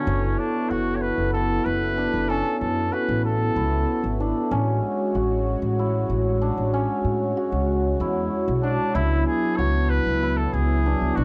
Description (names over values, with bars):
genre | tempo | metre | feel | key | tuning
progressive instrumental, progressive | 189 BPM (eighths) | 7/8 | straight | unclear | A4 = 440 Hz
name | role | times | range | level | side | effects
clear trumpet | melody | 0.0-4.2, 8.6-11.2 s | C#4 to C#5 | -29 LUFS | equal | none
warm analog pad | accompaniment | 0.0-11.2 s | D3 to C#5 | -28 LUFS | equal | chorus
hammered dulcimer | arpeggios | 0.0-11.2 s | D3 to C#5 | -31 LUFS | equal | none
upright bass | bass | 0.1-11.2 s | F#1 to A2 | -27 LUFS | equal | transformer saturation
room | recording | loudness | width
small room ambience | dry, close 1970s-style studio recording | -23 LUFS | mono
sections
0.0-11.2 A section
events
none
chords
0.1 F#m; 4.5 A; 9.0 C#m